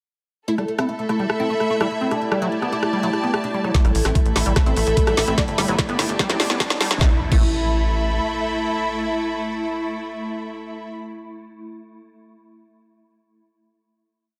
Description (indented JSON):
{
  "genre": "psychedelic trance",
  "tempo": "147 BPM",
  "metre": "4/4",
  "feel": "straight",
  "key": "unclear",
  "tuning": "A4 = 440 Hz",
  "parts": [
    { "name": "oud", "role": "melody", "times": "0.5-11.1 s", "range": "G3 to E4", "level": "-29 LUFS", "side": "equal", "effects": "phaser, sidechain pumping, tape echo" },
    { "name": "swarming drone", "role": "sustained chords", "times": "1.7-10.8 s", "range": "A3 to E4", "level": "-31 LUFS", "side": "equal", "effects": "built-in reverb, sidechain pumping" },
    { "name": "liquid acid bass", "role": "riff", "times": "0.5-7.4 s", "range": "F#3 to G4", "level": "-29 LUFS", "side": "equal", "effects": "chorus, sidechain pumping, tape echo" },
    { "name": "dark studio string section", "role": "texture", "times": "0.5-11.0 s", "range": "G4 to B5", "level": "-30 LUFS", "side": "equal", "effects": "sidechain pumping" },
    { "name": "drum and bass drum kit", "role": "drums", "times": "0.6-7.4 s", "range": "crash cymbal, hi-hat, rim click, snare drum", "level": "-26 LUFS", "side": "equal", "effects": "overdrive, low-pass filter on snare, low-pass filter on hats, low-pass filter on cymbals" },
    { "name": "electronic kick drum", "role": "drums", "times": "3.7-7.4 s", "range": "none", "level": "-20 LUFS", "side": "equal", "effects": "overdrive" },
    { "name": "riser and impact", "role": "sound effects", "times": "5.5-10.9 s", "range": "none", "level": "-33 LUFS", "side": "equal", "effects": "none" },
    { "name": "tight sequencer bass", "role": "bass", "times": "3.8-8.2 s", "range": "G1 to A1", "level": "-26 LUFS", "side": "equal", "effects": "none" },
    { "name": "vowel-sweep wobble bass", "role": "second line", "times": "4.6-6.6 s", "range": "none", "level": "barely audible", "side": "none", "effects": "none" }
  ],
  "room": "light reverb, digital ambience",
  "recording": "high-pass filter",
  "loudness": "-21 LUFS",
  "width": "mono",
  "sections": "0.5-3.7 intro; 3.7-7.0 build; 7.0-10.3 final chord",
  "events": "filter sweep on acid bass 0.5-3.7, 3.7-7.0; build-up 3.7-7.0; drum fill 3.7-7.0; filter sweep 3.7-7.0",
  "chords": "0.5 A5; 2.1 G5; 3.7 A5; 5.4 G5; 7.0 A5",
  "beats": "| 0.48 0.89 1.30 1.70 | 2.11 2.52 2.93 3.34 | 3.75 4.15 4.56 4.97 | 5.38 5.79 6.19 6.60 | 7.01 7.42 7.83 8.23 | 8.64 9.05 9.46 9.87"
}